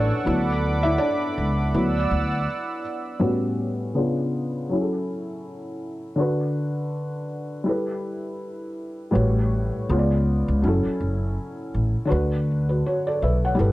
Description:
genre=lo-fi hip hop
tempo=81 BPM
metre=4/4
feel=swing 59% on 16ths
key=D major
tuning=A4 = 440 Hz
part: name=felt-muted upright piano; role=accompaniment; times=0.0-13.7 s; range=A2 to F#5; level=-24 LUFS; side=equal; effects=low-pass filter
part: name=warm analog pad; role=sustained chords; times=0.0-3.2 s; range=A4 to E6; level=-28 LUFS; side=right 3 dB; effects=chorus, low-pass filter
part: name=upright bass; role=bass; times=0.0-2.5, 9.2-13.7 s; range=F#1 to D2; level=-22 LUFS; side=equal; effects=none
room=light reverb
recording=cassette tape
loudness=-21 LUFS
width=side -17 dB against mid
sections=0.0-3.2 A section; 3.2-13.7 B section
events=felt piano solo 0.0-3.2; filter sweep on felt piano 3.2-13.7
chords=0.3 D6; 1.7 D69; 3.2 A13; 4.0 C#7b9; 4.7 F#m7; 6.2 D6; 7.7 G69; 9.1 A13; 9.9 C#7b9; 10.6 F#m7; 12.1 D6

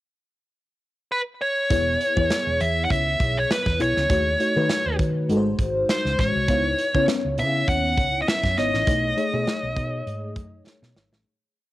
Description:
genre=polished 1980s jazz-funk pop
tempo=100 BPM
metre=4/4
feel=swing 54% on 16ths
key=E major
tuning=A4 = 440 Hz
part: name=nasal lead guitar with a parked wah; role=melody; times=1.1-10.6 s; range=B4 to F#5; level=-23 LUFS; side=equal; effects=overdrive, cassette tape
part: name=FM electric piano with soft pad layer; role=accompaniment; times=1.7-11.3 s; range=G#3 to C#5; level=-25 LUFS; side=left 2 dB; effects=tremolo, analog chorus, cassette tape
part: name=hollow-body short-scale fingered electric bass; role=bass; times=1.7-11.2 s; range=E1 to D#3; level=-27 LUFS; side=equal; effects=none
part: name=modern studio drum kit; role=drums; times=1.7-11.3 s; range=hi-hat, kick drum, snare drum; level=-26 LUFS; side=equal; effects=cassette tape
room=light reverb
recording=home recording on cassette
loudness=-20 LUFS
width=side -16 dB against mid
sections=0.0-1.7 pickup bar; 1.7-11.3 verse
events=fade-out 8.9-11.3; drum fill 10.7-11.3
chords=0.0 N.C.; 1.7 E6; 4.1 D#m7b5; 5.3 G#7; 6.5 C#m9; 8.9 B13

